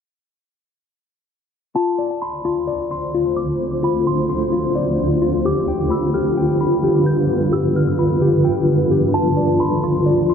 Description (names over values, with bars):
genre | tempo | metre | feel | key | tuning
hip hop | 130 BPM | 4/4 | half-time | D dorian | A4 = 439 Hz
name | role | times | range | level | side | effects
soft synth bell | melody | 1.8-10.1 s | A5 to G6 | -29 LUFS | right 3 dB | chorus, phaser, digital delay
granular cloud pad | sustained chords | 2.5-10.3 s | D2 to C5 | -17 LUFS | right 1 dB | built-in reverb
mellow electric guitar | arpeggios | 1.8-10.3 s | F4 to C6 | -22 LUFS | left 6 dB | digital delay
room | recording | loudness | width
moderate huge ambient reverb, RT60 4.6 s | low-pass filter | -16 LUFS | side -7 dB against mid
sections
1.8-10.3 A section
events
none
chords
1.8 Dm7; 5.4 G7; 9.1 Dm7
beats
| 1.76 2.22 2.68 3.14 | 3.60 4.06 4.53 4.99 | 5.45 5.91 6.37 6.83 | 7.29 7.76 8.22 8.68 | 9.14 9.60 10.06